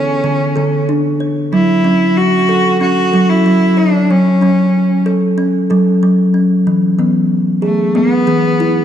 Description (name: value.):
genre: world meditative, meditative tuned percussion.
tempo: 93 BPM.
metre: 4/4.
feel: straight.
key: F# minor.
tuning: A4 = 440 Hz.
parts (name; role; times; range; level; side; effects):
bright cello; melody; 0.0-8.8 s; A3 to F#4; -16 LUFS; equal; none.
kalimba; arpeggios; 0.0-8.8 s; D3 to C#5; -12 LUFS; equal; none.
room: wet echo chamber reverb, RT60 2.6 s.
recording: dark, warm production.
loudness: -10 LUFS.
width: side -10 dB against mid.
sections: 0.0-8.8 A section.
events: none.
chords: 0.0 D5; 1.5 F#m; 6.7 E.